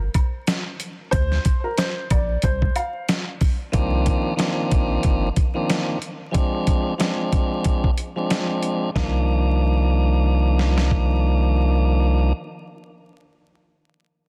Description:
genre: hip hop, boom-bap hip-hop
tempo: 92 BPM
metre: 4/4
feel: swing 57% on 16ths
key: C minor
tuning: A4 = 440 Hz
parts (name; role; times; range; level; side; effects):
- soft dub sub bass; bass; 0.0-12.3 s; G1 to D2; -22 LUFS; equal; none
- dusty soul sampler-style drum kit; drums; 0.1-11.1 s; hi-hat, kick drum, snare drum; -24 LUFS; equal; none
- maracas and woodblock; percussion; 0.1-3.6 s; none; -38 LUFS; equal; none
- dark upright piano; melody; 1.1-3.1 s; Bb4 to F5; -30 LUFS; equal; tape echo
- tonewheel organ; accompaniment; 3.7-12.3 s; Eb3 to D4; -26 LUFS; equal; overdrive, cassette tape
room: light reverb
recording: dense, heavily limited modern master, vinyl crackle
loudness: -21 LUFS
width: mono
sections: 0.0-3.7 A section; 3.7-9.0 B section; 9.0-11.6 C section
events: break 0.0-3.7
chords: 0.0 N.C.; 1.1 Bbadd9; 3.7 Cm11; 6.3 Dm7b5; 9.0 Cm11

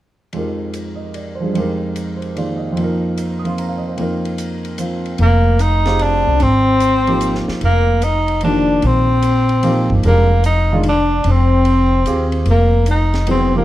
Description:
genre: modal jazz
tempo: 148 BPM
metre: 3/4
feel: swing 66% on 8ths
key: F dorian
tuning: A4 = 440 Hz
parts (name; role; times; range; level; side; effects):
- clear grand piano; accompaniment; 0.3-13.6 s; F2 to Eb6; -20 LUFS; right 1 dB; none
- compact cocktail drum kit; drums; 0.3-13.4 s; hi-hat, kick drum, ride cymbal, snare drum; -33 LUFS; left 2 dB; none
- warm tenor saxophone; melody; 5.2-13.6 s; Bb3 to Eb4; -18 LUFS; right 2 dB; none
- clear trombone; second line; 5.2-13.6 s; Bb3 to Eb4; -19 LUFS; left 4 dB; none
- upright bass; bass; 5.2-13.6 s; F1 to Eb2; -15 LUFS; equal; none
room: light reverb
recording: dark, warm production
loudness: -13 LUFS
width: side -14 dB against mid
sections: 0.3-5.2 A section; 5.2-13.6 B section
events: none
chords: 0.3 Fm11; 2.8 Ebsus2/F; 5.2 Fm11; 7.6 Ebsus2/F; 10.0 Fm11; 12.5 Ebsus2/F

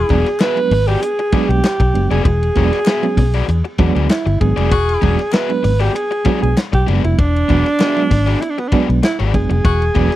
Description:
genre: funk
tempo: 97 BPM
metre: 4/4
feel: straight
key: E mixolydian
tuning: A4 = 439 Hz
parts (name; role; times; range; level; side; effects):
- breathy alto saxophone; melody; 0.0-10.2 s; B3 to B4; -18 LUFS; right 2 dB; none
- breathy baritone saxophone; second line; 0.0-0.2, 4.7-5.1, 9.6-9.8 s; F#4; -24 LUFS; left 9 dB; none
- vintage muted fingered electric bass; bass; 0.0-10.1 s; E1 to E2; -16 LUFS; left 1 dB; none
- crunchy overdriven guitar; accompaniment; 0.1-10.1 s; B3 to E5; -24 LUFS; left 8 dB; none
- reed electric piano; stabs; 0.1-10.1 s; F#3 to D4; -20 LUFS; right 5 dB; fast tremolo
- warm soul drum kit; drums; 0.1-10.2 s; hi-hat, kick drum, ride cymbal, snare drum; -18 LUFS; left 1 dB; none
- group handclap; percussion; 0.4-9.2 s; none; -32 LUFS; left 6 dB; none
room: studio ambience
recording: dry, close 1970s-style studio recording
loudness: -13 LUFS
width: side -14 dB against mid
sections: 0.0-10.2 A section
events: none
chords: 0.0 E9

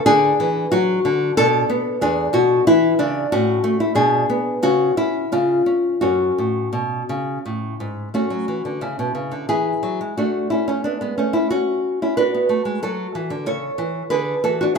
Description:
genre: classical, baroque-style dance for nylon-string guitar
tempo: 84-94 BPM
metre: 3/4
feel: rubato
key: F# minor, A major from 8.1 s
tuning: A4 = 439 Hz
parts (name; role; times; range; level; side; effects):
- nylon-string guitar; solo; 0.0-14.8 s; E2 to C#5; -17 LUFS; left 1 dB; none
room: moderate recital hall reverb, RT60 1.6 s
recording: minimal, uncompressed stereo recording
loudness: -17 LUFS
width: side -5 dB against mid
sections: 0.0-8.1 A section; 8.1-14.8 A section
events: none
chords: 0.0 D; 1.4 Bm; 2.0 E5; 3.3 A; 4.0 G#dim/B; 4.6 N.C.; 6.0 F#m; 8.1 A (rootless); 9.5 E; 10.2 A; 12.2 D; 13.5 A/C#; 14.1 D

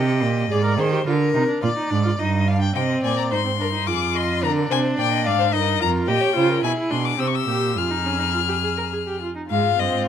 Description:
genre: classical, baroque-style fugue for string quartet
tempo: 107 BPM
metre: 3/4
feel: straight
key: Eb major, F minor from 6.1 s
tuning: A4 = 440 Hz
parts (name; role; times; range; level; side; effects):
- rich violin; second line; 0.0-10.1 s; F4 to G5; -27 LUFS; left 5 dB; none
- warm viola; accompaniment; 0.0-10.1 s; Ab3 to Bb4; -25 LUFS; right 2 dB; none
- rich cello; bass; 0.0-10.1 s; F2 to Eb3; -23 LUFS; right 4 dB; none
- warm violin; melody; 2.8-10.1 s; Eb5 to F6; -23 LUFS; left 12 dB; none
room: light reverb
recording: close, detailed microphones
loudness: -19 LUFS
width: side -9 dB against mid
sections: 0.0-2.8 A section; 2.8-9.5 B section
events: none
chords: 0.0 Eb; 0.5 Abadd9(#11); 1.1 Bb; 2.2 Eb/G; 2.8 Cm; 3.9 Fm; 4.4 Bb; 5.5 Eb/G; 6.1 Gm7b5; 6.6 E7b13; 7.2 C7; 7.8 Fm

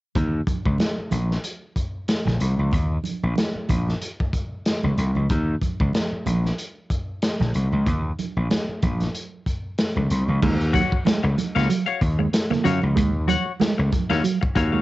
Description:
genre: funk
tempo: 94 BPM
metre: 4/4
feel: swing 56% on 16ths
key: Eb dorian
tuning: A4 = 439 Hz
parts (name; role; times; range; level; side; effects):
- congas; percussion; 0.1-14.7 s; none; -31 LUFS; right 5 dB; none
- gritty slap bass; bass; 0.2-14.8 s; Bb1 to Gb2; -21 LUFS; equal; overdrive
- crunchy breakbeat drum kit; drums; 0.2-14.7 s; crash cymbal, hi-hat, kick drum, snare drum; -24 LUFS; equal; none
- mellow electric guitar; riff; 10.4-14.8 s; Gb3 to Bb3; -24 LUFS; right 5 dB; harmonic tremolo
- semi-hollow electric guitar; accompaniment; 10.7-14.8 s; Gb4 to Gb5; -26 LUFS; left 7 dB; lush chorus
room: studio reverb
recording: home recording on cassette, nothing above 7.9 kHz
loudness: -20 LUFS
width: side -17 dB against mid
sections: 0.2-10.4 A section; 10.4-14.8 B section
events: none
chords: 0.2 Eb5; 10.4 Ebm9

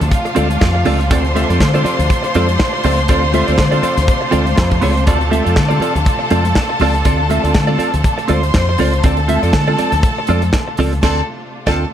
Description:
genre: disco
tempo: 121 BPM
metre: 4/4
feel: swing 56% on 16ths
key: D minor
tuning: A4 = 441 Hz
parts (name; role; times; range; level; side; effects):
- bright studio violin section; second line; 0.0-11.8 s; F4 to C6; -19 LUFS; left 1 dB; none
- direct-recorded clean electric guitar; accompaniment; 0.0-11.8 s; C4 to E5; -19 LUFS; right 4 dB; wide subtle chorus
- bright studio string section; sustained chords; 0.0-11.9 s; C3 to F4; -24 LUFS; equal; none
- deep dub fingered electric bass; bass; 0.0-11.8 s; C#2 to D3; -16 LUFS; equal; none
- modern studio drum kit; drums; 0.0-11.8 s; crash cymbal, hi-hat, kick drum, snare drum; -17 LUFS; equal; none
- congas; percussion; 0.0-10.9 s; none; -25 LUFS; left 6 dB; none
room: little or no reverb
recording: none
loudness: -12 LUFS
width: side -10 dB against mid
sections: 0.0-11.9 A section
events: band accent 11.0-11.9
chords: 0.0 Dm7

